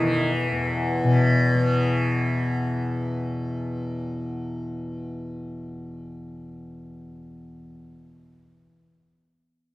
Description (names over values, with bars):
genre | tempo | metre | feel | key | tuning
indian classical | 172 BPM | 4/4 | straight | unclear | A4 = 440 Hz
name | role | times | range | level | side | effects
tanpura | drone | 0.0-8.7 s | E2 to E3 | -24 LUFS | left 1 dB | none
room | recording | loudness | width
wet recital hall reverb, RT60 1.8 s | none | -22 LUFS | side -17 dB against mid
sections
0.0-1.7 A section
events
none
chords
none